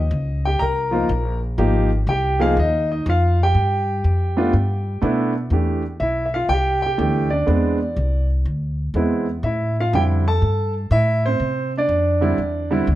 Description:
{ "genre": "jazz piano trio", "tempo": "122 BPM", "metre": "4/4", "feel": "swing 67% on 8ths", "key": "C major", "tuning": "A4 = 440 Hz", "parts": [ { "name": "clear grand piano", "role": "melody", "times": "0.0-13.0 s", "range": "D3 to Bb5", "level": "-20 LUFS", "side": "right 1 dB", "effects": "none" }, { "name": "upright bass", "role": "bass", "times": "0.0-13.0 s", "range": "Ab1 to C3", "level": "-20 LUFS", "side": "equal", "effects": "none" } ], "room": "moderate large studio reverb, RT60 1.2 s", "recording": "dark, warm production", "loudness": "-17 LUFS", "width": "side -14 dB against mid", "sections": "0.0-5.5 A section; 5.5-13.0 B section", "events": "none", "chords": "0.0 Eb7(no3); 1.6 Abmaj9; 3.5 G7; 5.5 Cmaj7; 7.5 E7b13; 9.4 Am7; 11.4 Cadd9" }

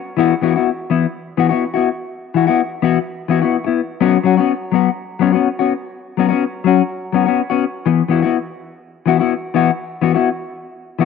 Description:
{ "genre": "highlife", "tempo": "125 BPM", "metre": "4/4", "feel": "swing 55% on 16ths", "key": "unclear", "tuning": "A4 = 441 Hz", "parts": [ { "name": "mellow electric guitar", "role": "solo", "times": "0.2-11.1 s", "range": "E3 to F#4", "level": "-15 LUFS", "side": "left 8 dB", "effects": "wide subtle chorus" } ], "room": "moderate spring reverb, RT60 2.0 s", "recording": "none", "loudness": "-15 LUFS", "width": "side -5 dB against mid", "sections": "0.0-7.9 A section; 7.9-11.1 A section", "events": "none", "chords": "0.2 Esus2; 4.0 Bsus2/F#; 7.9 Esus2" }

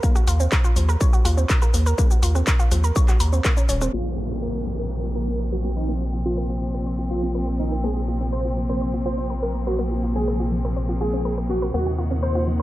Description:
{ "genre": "melodic techno", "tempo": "123 BPM", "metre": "4/4", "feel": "straight", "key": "unclear", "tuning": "A4 = 443 Hz", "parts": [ { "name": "analog pluck", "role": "arpeggios", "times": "0.0-12.6 s", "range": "F3 to Db5", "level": "-30 LUFS", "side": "right 1 dB", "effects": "chorus, sidechain pumping, dub echo" }, { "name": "electronic kick drum", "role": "drums", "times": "0.0-3.5 s", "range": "none", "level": "-18 LUFS", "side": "equal", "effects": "distortion" }, { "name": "techno drum kit", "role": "drums", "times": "0.0-4.0 s", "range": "crash cymbal, handclaps, hi-hat, rim click, shaker", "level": "-28 LUFS", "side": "left 1 dB", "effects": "none" }, { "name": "round analog bass", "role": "bass", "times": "0.3-12.6 s", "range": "Eb1 to Eb2", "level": "-24 LUFS", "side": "equal", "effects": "sidechain pumping" }, { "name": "wide unison lead", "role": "melody", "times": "3.9-12.6 s", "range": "Eb4 to C5", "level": "-28 LUFS", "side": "right 1 dB", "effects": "digital delay" }, { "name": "clear studio string section", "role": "sustained chords", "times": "3.9-12.6 s", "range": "Eb3 to Gb5", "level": "-28 LUFS", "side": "left 1 dB", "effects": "sidechain pumping" }, { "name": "analog drone", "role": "drone", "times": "5.1-12.6 s", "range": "Bb2 to C3", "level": "-34 LUFS", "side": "equal", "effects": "chorus, sidechain pumping" }, { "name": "downlifter", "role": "sound effects", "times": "3.9-7.8 s", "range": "none", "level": "-34 LUFS", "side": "equal", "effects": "none" } ], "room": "digital ambience", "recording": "low-pass filter", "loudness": "-20 LUFS", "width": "side -16 dB against mid", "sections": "0.0-3.9 A section; 3.9-12.6 B section", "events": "filter sweep on synth arpeggio sound 3.9-12.6; filter sweep on analog synth lead 3.9-12.6; filter sweep 3.9-12.6", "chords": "0.0 Ebm; 3.9 Bbsus2; 11.7 Ebm" }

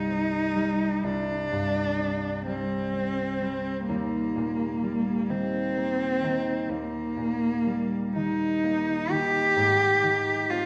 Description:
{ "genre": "classical, romantic duo for cello and harp", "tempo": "42 BPM (dotted quarters)", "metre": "12/8", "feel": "rubato", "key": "unclear", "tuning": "A4 = 444 Hz", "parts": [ { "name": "rich cello", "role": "melody", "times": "0.0-10.7 s", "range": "Bb3 to G4", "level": "-28 LUFS", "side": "equal", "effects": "none" }, { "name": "concert harp", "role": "accompaniment", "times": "0.0-10.7 s", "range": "C2 to G4", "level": "-31 LUFS", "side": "equal", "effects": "none" } ], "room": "wet recital hall reverb, RT60 1.7 s", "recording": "nothing above 11.0 kHz", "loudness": "-27 LUFS", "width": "mono", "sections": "0.0-10.7 A section", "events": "none", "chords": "0.0 Cm; 3.9 Eb; 9.6 Ab" }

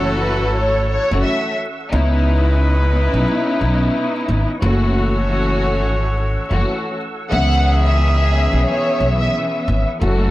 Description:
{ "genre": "hip hop", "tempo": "89 BPM", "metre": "4/4", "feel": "swing 59% on 16ths", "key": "C# minor", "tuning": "A4 = 439 Hz", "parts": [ { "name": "dark studio violin section", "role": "melody", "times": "0.0-1.5, 7.3-9.3 s", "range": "B4 to F#5", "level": "-21 LUFS", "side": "equal", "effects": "high-pass filter, low-pass filter, tape echo" }, { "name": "dark studio string section", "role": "accompaniment", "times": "0.0-10.3 s", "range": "E3 to E5", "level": "-21 LUFS", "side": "left 1 dB", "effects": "cassette tape, high-pass filter, low-pass filter" }, { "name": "tonewheel organ", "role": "sustained chords", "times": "0.0-10.3 s", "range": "A4 to E6", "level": "-31 LUFS", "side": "equal", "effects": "chorus vibrato, slow rotary speaker, high-pass filter, low-pass filter" }, { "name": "clear horn section", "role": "stabs", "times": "0.0-10.3 s", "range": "D#3 to C#5", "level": "-25 LUFS", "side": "equal", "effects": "high-pass filter, low-pass filter, tape echo" }, { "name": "upright bass", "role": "bass", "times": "0.0-10.3 s", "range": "F#1 to C#2", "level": "-17 LUFS", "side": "equal", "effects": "none" } ], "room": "small room ambience", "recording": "dry, gritty hardware recording, vinyl crackle", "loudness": "-15 LUFS", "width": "side -16 dB against mid", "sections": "0.0-10.3 A section", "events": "none", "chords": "0.0 F#m7; 1.9 C#m9; 4.6 F#m7; 7.3 C#m9" }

